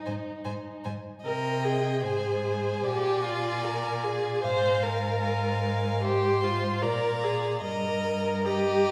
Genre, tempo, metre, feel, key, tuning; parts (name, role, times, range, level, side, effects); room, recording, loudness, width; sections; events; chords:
classical, slow romantic movement for string quartet; 75 BPM; 4/4; rubato; A4 = 440 Hz
rich viola; accompaniment; 0.0-8.9 s; Eb4 to C5; -31 LUFS; equal
rich violin; melody; 0.1-8.9 s; G5 to C6; -38 LUFS; equal
rich violin; second line; 0.1-8.9 s; C5 to F5; -36 LUFS; equal
rich cello; bass; 0.1-8.9 s; G2 to C3; -34 LUFS; equal
wet recital hall reverb, RT60 1.4 s; recorded in a church or concert hall; -28 LUFS; mono
0.0-8.9 A section
0.0 Ab5; 1.3 Ab/C; 2.9 Bb; 4.4 Bb7/Ab; 7.6 Eb/G